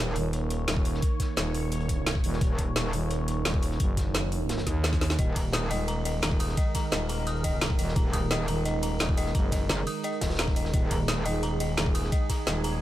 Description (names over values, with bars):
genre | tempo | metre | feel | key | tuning
dark technical drum and bass | 173 BPM | 4/4 | straight | Eb minor | A4 = 440 Hz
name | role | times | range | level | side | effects
sweeping resonant pad | sustained chords | 0.0-12.8 s | Eb3 to Db5 | -34 LUFS | right 4 dB | chorus, sidechain pumping
metallic wobble bass | bass | 0.0-0.1, 2.4-2.9, 5.2-5.7, 8.0-11.2 s | Eb1 to Gb1 | -29 LUFS | equal | chorus, overdrive, sidechain pumping
growling FM bass | bass | 0.2-12.8 s | Eb1 to Eb2 | -29 LUFS | equal | none
crunchy breakbeat drum kit | drums | 0.2-12.7 s | hi-hat, snare drum | -40 LUFS | equal | none
drum and bass drum kit | drums | 0.2-12.7 s | hi-hat, ride cymbal, snare drum | -32 LUFS | equal | overdrive
electronic kick drum | drums | 0.8-12.4 s | none | -27 LUFS | equal | overdrive
dark detuned synth bell | arpeggios | 5.2-12.7 s | Eb5 to Eb6 | -34 LUFS | left 2 dB | chorus, sidechain pumping, digital delay
room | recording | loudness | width
digital ambience | none | -25 LUFS | side -14 dB against mid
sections
0.0-12.8 A section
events
drum fill 4.9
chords
0.0 Eb5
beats
0.33 0.68 | 1.02 1.37 1.72 2.07 | 2.41 2.76 3.11 3.45 | 3.80 4.15 4.49 4.84 | 5.19 5.53 5.88 6.23 | 6.57 6.92 7.27 7.62 | 7.96 8.31 8.65 9.00 | 9.35 9.70 10.04 10.39 | 10.74 11.08 11.43 11.78 | 12.12 12.47